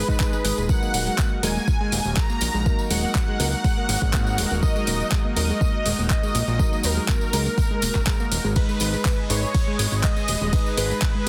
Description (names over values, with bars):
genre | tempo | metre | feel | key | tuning
progressive house | 122 BPM | 4/4 | straight | unclear | A4 = 440 Hz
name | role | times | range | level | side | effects
unison lead | melody | 0.0-11.3 s | A#4 to A#5 | -33 LUFS | equal | ensemble chorus, delay
soft supersaw | second line | 0.0-11.3 s | A#4 to A#5 | -36 LUFS | equal | sidechain pumping, digital delay
lush unison pad | sustained chords | 0.0-11.3 s | G#3 to D#5 | -38 LUFS | equal | chorus, phaser, sidechain pumping
soft round pluck | arpeggios | 0.0-11.3 s | G#3 to G#4 | -32 LUFS | equal | chorus, cassette tape, sidechain pumping, digital delay
fat analog bass | bass | 0.0-10.9 s | D#1 to G#2 | -28 LUFS | equal | tube saturation, sidechain pumping
electronic kick drum | drums | 0.1-11.1 s | none | -25 LUFS | equal | none
tambourine | percussion | 0.1-11.1 s | none | -36 LUFS | equal | none
dark grand piano | stabs | 0.2-11.2 s | F#3 to B4 | -34 LUFS | equal | sidechain pumping, digital delay
deep house drum kit | drums | 0.2-11.3 s | handclaps, hi-hat, ride cymbal | -31 LUFS | equal | sidechain pumping on hats, sidechain pumping on cymbals
room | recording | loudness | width
digital ambience | dense, heavily limited modern master | -22 LUFS | mono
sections
0.0-11.3 A section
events
none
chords
0.0 G#m; 0.7 D#m; 8.6 G#m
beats
0.20 | 0.69 1.19 1.68 2.17 | 2.66 3.15 3.64 4.13 | 4.63 5.12 5.61 6.10 | 6.59 7.09 7.58 8.07 | 8.56 9.05 9.54 10.04 | 10.53 11.02